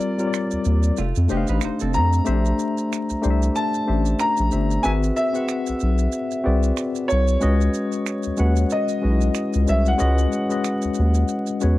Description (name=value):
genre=R&B, neo-soul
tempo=93 BPM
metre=4/4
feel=swing 57% on 16ths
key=unclear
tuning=A4 = 439 Hz
part: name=warm concert grand piano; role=melody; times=0.0-11.8 s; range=C#5 to A#5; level=-26 LUFS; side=equal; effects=none
part: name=tine electric piano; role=accompaniment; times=0.0-11.8 s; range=G3 to F#5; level=-23 LUFS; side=left 2 dB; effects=medium stereo tremolo
part: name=maracas and finger snaps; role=percussion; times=0.0-11.8 s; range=none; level=-34 LUFS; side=right 15 dB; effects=none
part: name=round analog bass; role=bass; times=0.5-11.8 s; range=F1 to F2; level=-19 LUFS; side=equal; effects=none
part: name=hollow-body jazz guitar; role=second line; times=1.0-2.2 s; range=A3 to C5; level=-29 LUFS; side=right 6 dB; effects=none
room=light reverb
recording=dry, close 1970s-style studio recording, vinyl crackle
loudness=-18 LUFS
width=side -16 dB against mid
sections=0.0-11.8 A section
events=none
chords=0.0 Cm11; 1.0 F13; 2.3 A#maj9; 4.8 G#7alt; 7.4 C#m11